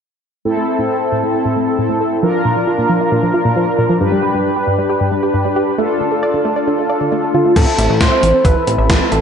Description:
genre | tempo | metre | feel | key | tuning
synth-pop | 135 BPM | 4/4 | straight | A minor | A4 = 440 Hz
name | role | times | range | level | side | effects
mellow synth brass | accompaniment | 0.5-9.2 s | C4 to B4 | -16 LUFS | equal | chorus
resonant blip pluck | arpeggios | 0.5-9.2 s | G2 to E5 | -19 LUFS | right 1 dB | phaser, low-pass filter, analog delay
soft struck synth lead | melody | 7.3-9.2 s | F4 to C5 | -15 LUFS | equal | chorus, slapback echo
chorused synth bass | bass | 7.6-9.2 s | A1 | -16 LUFS | equal | none
gated 80s digital drum machine | drums | 7.6-9.2 s | crash cymbal, hi-hat, kick drum, snare drum | -14 LUFS | equal | gated reverb, gated reverb snare, overdrive
room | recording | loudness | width
wet concert hall reverb, RT60 1.7 s | big arena sound, nothing above 10.9 kHz | -13 LUFS | side -7 dB against mid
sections
0.5-7.6 A section; 7.6-9.2 B section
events
filter sweep on synth arpeggio sound 0.5-7.6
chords
0.5 Am; 2.2 Bb; 4.0 G; 5.8 Dm; 7.6 Am

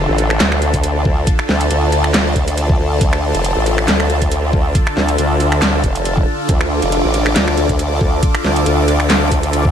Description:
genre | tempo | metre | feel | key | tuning
heavy wobble dubstep | 138 BPM | 4/4 | swing 55% on 16ths, half-time | D minor | A4 = 439 Hz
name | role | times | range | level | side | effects
supersaw pad | sustained chords | 0.0-9.7 s | D3 to D6 | -18 LUFS | equal | phaser, sidechain pumping
formant-sweep wobble bass | bass | 0.0-9.7 s | F1 to D2 | -16 LUFS | equal | chorus, overdrive
dubstep drum kit | drums | 0.2-9.6 s | finger snaps, handclaps, hi-hat, snare drum | -18 LUFS | right 1 dB | none
electronic kick drum | drums | 0.7-9.7 s | none | -16 LUFS | equal | none
room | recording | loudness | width
little or no reverb | lossy compression artefacts | -13 LUFS | side -8 dB against mid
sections
0.0-9.7 A section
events
none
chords
0.0 Dm

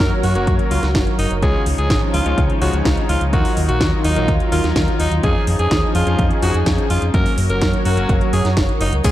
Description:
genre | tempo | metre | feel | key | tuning
italo disco | 126 BPM | 4/4 | straight | unclear | A4 = 440 Hz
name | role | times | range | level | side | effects
raspy alto saxophone | melody | 0.0-9.1 s | Eb4 to Bb4 | -23 LUFS | equal | digital delay
warm analog pad | sustained chords | 0.0-9.1 s | Eb3 to Db5 | -23 LUFS | equal | chorus
bright electric grand piano | stabs | 0.0-9.1 s | Db3 to Db5 | -25 LUFS | left 4 dB | none
fingered electric bass with an envelope filter | bass | 0.0-9.1 s | Gb1 to Gb2 | -19 LUFS | equal | none
electronic kick drum | drums | 0.0-9.1 s | none | -20 LUFS | equal | overdrive
house drum kit | drums | 0.0-9.1 s | cabasa, crash cymbal, hi-hat, snare drum | -25 LUFS | equal | overdrive
room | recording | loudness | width
light reverb | dark, warm production | -15 LUFS | side -13 dB against mid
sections
0.0-9.0 A section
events
none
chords
0.0 Gb; 1.4 Dbadd9; 3.3 Ebmadd9; 5.2 Dbadd9; 7.1 Gb

